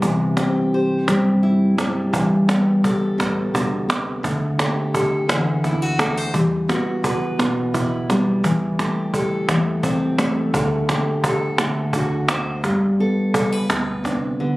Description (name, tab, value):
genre	acoustic folk duo or small band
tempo	57 BPM (dotted quarters)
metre	6/8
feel	straight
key	G major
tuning	A4 = 439 Hz
part	fingerpicked steel-string acoustic guitar	accompaniment	0.0-14.6 s	G2 to C5	-20 LUFS	left 1 dB	none
part	dark upright piano	arpeggios	0.0-14.6 s	E3 to A4	-24 LUFS	right 2 dB	none
part	upright bass	bass	0.0-14.6 s	G1 to G2	-32 LUFS	equal	none
part	cajon	percussion	0.0-14.2 s	none	-24 LUFS	right 1 dB	none
room	light reverb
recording	recorded on a phone in the room, club reverb, compression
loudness	-18 LUFS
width	side -19 dB against mid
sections	0.0-14.6 A section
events	none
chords	0.0 C; 2.1 G6; 4.2 Dsus4; 5.3 Dadd9; 6.3 Emadd9; 8.4 Am7/E; 10.5 Dsus4; 11.6 D; 12.6 Gadd9